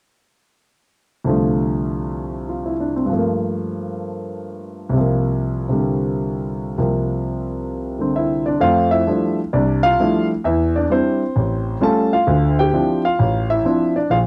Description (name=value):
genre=solo jazz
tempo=131 BPM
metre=4/4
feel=swing 65% on 8ths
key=F major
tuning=A4 = 440 Hz
part: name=warm concert grand piano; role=solo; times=1.2-14.3 s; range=A1 to A5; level=-19 LUFS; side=equal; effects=cassette tape
room=wet small room reverb, RT60 0.5 s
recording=home recording on cassette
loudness=-19 LUFS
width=mono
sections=1.3-8.6 A section; 8.6-14.3 B section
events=none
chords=1.3 F6/C; 3.1 Gm9; 4.9 C7sus4; 8.6 Fmaj13; 10.4 Cadd9/E; 11.4 A7alt; 12.3 Dm9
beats=| 1.26 1.72 2.18 2.64 | 3.10 3.56 4.02 4.48 | 4.94 5.40 5.86 6.32 | 6.78 7.23 7.69 8.15 | 8.61 9.07 9.53 9.98 | 10.44 10.90 11.36 11.81 | 12.27 12.73 13.18 13.64 | 14.10